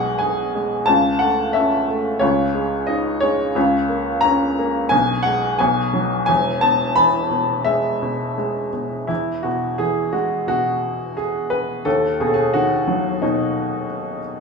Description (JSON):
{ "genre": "classical, lyrical solo piano", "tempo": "88 BPM", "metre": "4/4", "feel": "rubato", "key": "E major", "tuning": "A4 = 440 Hz", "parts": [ { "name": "clear upright piano", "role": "solo", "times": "0.0-14.4 s", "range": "E1 to B5", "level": "-17 LUFS", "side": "left 1 dB", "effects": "none" } ], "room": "light reverb", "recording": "small room reverb", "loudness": "-17 LUFS", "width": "side -4 dB against mid", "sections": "0.0-9.1 A section; 9.1-14.4 B section", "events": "none", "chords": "0.0 G#m7/B; 0.9 A/C#; 2.2 C#sus2; 3.6 A#m/C#; 4.9 G#m7/B; 6.3 E; 11.9 B/D#" }